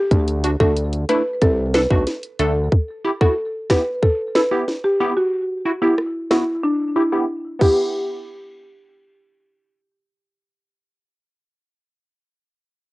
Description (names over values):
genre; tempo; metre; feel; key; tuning
dancehall; 92 BPM; 4/4; straight; E minor; A4 = 441 Hz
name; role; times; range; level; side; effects
buzzing marimba with medium mallets; melody; 0.0-9.9 s; D4 to B4; -20 LUFS; equal; low-pass filter, cassette tape, tape echo
fat analog bass; bass; 0.1-2.7 s; B1 to D2; -20 LUFS; equal; none
island pop drum kit; drums; 0.1-7.8 s; crash cymbal, finger snaps, hi-hat, kick drum, rim click, snare drum; -19 LUFS; equal; cassette tape
wavetable chord stab; accompaniment; 0.4-12.0 s; A3 to A4; -22 LUFS; equal; phaser, low-pass filter, cassette tape
room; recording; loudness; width
light reverb; home recording on cassette, nothing above 10.4 kHz; -17 LUFS; side -20 dB against mid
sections
0.0-7.9 A section; 7.9-10.5 B section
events
filter sweep 0.0-7.9; drums muted 6.6-7.9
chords
0.1 D; 2.7 Em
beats
| 0.11 0.76 1.42 2.07 | 2.72 3.37 4.03 4.68 | 5.33 5.98 6.63 7.29 | 7.94 8.59 9.24 9.89